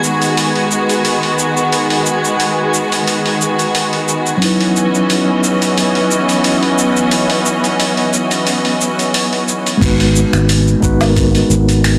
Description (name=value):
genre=sunset chillout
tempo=89 BPM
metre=4/4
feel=swing 54% on 16ths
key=G# minor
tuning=A4 = 440 Hz
part: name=mellow tine electric piano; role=accompaniment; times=0.0-12.0 s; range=F#3 to B4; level=-20 LUFS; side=equal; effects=tape echo
part: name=clear symphonic string section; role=sustained chords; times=0.0-9.8 s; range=D#3 to D#5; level=-18 LUFS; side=equal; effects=vintage 12-bit sampler grit
part: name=dusty soul sampler-style drum kit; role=drums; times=0.0-12.0 s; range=crash cymbal, finger snaps, hi-hat, shaker, woodblock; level=-21 LUFS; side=equal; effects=studio ambience, soft clipping on snare
part: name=twinkling granular texture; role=texture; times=0.0-9.8 s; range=G#4 to G#5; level=-28 LUFS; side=equal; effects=built-in reverb
part: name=sustaining fretless electric bass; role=bass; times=9.8-12.0 s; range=G#1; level=-16 LUFS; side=equal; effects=ensemble chorus
part: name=electronic kick drum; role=drums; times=9.8-11.3 s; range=none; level=-20 LUFS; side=equal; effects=studio ambience
room=moderate concert hall reverb, RT60 2.3 s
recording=dense, heavily limited modern master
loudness=-14 LUFS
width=mono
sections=0.0-9.8 A section; 9.8-12.0 B section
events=none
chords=0.0 G#m7; 4.4 C#m11; 9.8 G#m7